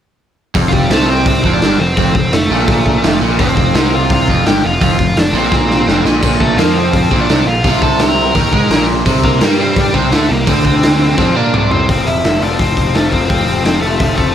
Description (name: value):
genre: punk rock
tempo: 170 BPM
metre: 4/4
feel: straight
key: F major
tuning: A4 = 440 Hz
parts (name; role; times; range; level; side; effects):
- fuzz picked electric bass; bass; 0.5-14.3 s; F1 to Bb2; -18 LUFS; equal; overdrive
- raw garage drum kit; drums; 0.5-14.3 s; crash cymbal, hi-hat, kick drum, snare drum, toms; -15 LUFS; equal; none
- overdriven electric guitar; riff; 0.6-11.9 s; F2 to Bb3; -17 LUFS; right 11 dB; none
- raw garage guitar; riff; 0.6-14.3 s; F2 to Bb3; -19 LUFS; left 15 dB; overdrive
- bluesy overdriven lead guitar; melody; 0.7-14.3 s; G3 to Bb5; -17 LUFS; equal; distortion
room: little or no reverb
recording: none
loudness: -10 LUFS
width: side -9 dB against mid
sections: 0.6-11.9 A section; 11.9-14.3 B section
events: drum fill 5.5-6.2, 11.2-11.9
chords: 0.6 F; 6.2 Bb5; 9.1 C5; 11.9 F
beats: | 0.56 0.91 1.26 1.62 | 1.98 2.33 2.68 3.04 | 3.39 3.75 4.10 4.46 | 4.81 5.16 5.52 5.87 | 6.23 6.58 6.93 7.29 | 7.64 8.00 8.35 8.71 | 9.06 9.41 9.77 10.12 | 10.47 10.83 11.18 11.53 | 11.89 12.24 12.60 12.95 | 13.30 13.66 14.01